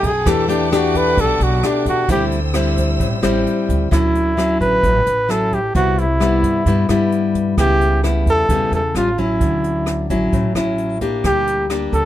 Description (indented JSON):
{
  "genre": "bossa nova",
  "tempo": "131 BPM",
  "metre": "4/4",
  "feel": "straight",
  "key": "D major from 3.9 s",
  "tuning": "A4 = 442 Hz",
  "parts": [
    { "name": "warm flugelhorn", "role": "melody", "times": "0.0-12.1 s", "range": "D4 to B4", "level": "-18 LUFS", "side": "right 1 dB", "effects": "none" },
    { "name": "nylon-string guitar", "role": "accompaniment", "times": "0.0-12.1 s", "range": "F#2 to G4", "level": "-19 LUFS", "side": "left 3 dB", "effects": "none" },
    { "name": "warm symphonic violin section", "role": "sustained chords", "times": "0.0-3.9 s", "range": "A4 to E6", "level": "-27 LUFS", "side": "left 2 dB", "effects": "none" },
    { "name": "upright bass", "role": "bass", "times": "0.0-12.1 s", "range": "A1 to G2", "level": "-21 LUFS", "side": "right 1 dB", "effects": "none" },
    { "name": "jazz brush drum kit", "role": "drums", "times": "0.0-12.0 s", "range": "hi-hat, kick drum, rim click", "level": "-25 LUFS", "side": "right 1 dB", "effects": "none" }
  ],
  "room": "little or no reverb",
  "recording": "close, detailed microphones",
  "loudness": "-14 LUFS",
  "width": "side -13 dB against mid",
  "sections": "0.0-3.9 A section; 3.9-12.1 B section",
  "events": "flugelhorn solo 0.0-3.9",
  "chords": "0.3 Em11; 2.1 D9sus4; 3.9 Dmaj9; 5.7 Cmaj7; 7.6 A9/C#; 9.0 A7b13; 9.4 Dmaj9; 11.2 Gm/D"
}